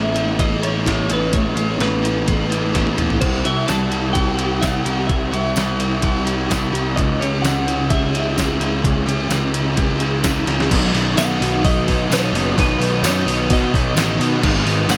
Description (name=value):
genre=rock, shoegaze and dream pop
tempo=128 BPM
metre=4/4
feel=straight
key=unclear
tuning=A4 = 440 Hz
part: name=twelve-string electric guitar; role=melody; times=0.0-15.0 s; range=B4 to A5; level=-28 LUFS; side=equal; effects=subtle chorus, diffuse ambient delay
part: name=biting overdriven guitar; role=riff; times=0.0-15.0 s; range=G#2 to A4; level=-24 LUFS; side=equal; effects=reverse reverb
part: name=overdriven semi-hollow guitar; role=riff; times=0.0-15.0 s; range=G#2 to A4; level=-28 LUFS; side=equal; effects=ensemble chorus
part: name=fuzz picked electric bass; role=bass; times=0.0-15.0 s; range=F#1 to B2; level=-23 LUFS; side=equal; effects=overdrive
part: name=detuned 8-bit digital drum machine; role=drums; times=0.2-15.0 s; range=crash cymbal, hi-hat, kick drum, snare drum, toms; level=-24 LUFS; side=equal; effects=none
part: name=tambourine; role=percussion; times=3.7-15.0 s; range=none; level=-33 LUFS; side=equal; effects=none
room=moderate huge ambient reverb, RT60 7.6 s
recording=dreamy mix soaked in reverb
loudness=-18 LUFS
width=mono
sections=0.0-10.7 A section; 10.7-15.0 B section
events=drum fill 2.7-3.2, 10.5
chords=0.0 Asus2; 3.2 C; 7.0 C#m; 10.7 Badd9; 14.4 G#m